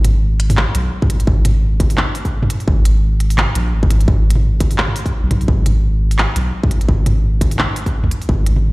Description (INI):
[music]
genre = half-time drum and bass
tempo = 171 BPM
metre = 4/4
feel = swing 57% on 16ths, half-time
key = G# minor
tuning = A4 = 440 Hz
[part]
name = saturated sub bass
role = bass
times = 0.0-8.7 s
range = G#1 to B1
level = -15 LUFS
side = equal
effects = none
[part]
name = industrial drum kit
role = drums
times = 0.0-8.6 s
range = handclaps, hi-hat, toms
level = -20 LUFS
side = equal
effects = none
[part]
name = electronic kick drum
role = drums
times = 1.0-8.4 s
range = none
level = -16 LUFS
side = equal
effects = distortion
[sound]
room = digital ambience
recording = played on a big sound system in a bare room, large studio reverb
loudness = -13 LUFS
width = side -23 dB against mid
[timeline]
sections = 0.0-8.7 A section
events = none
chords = none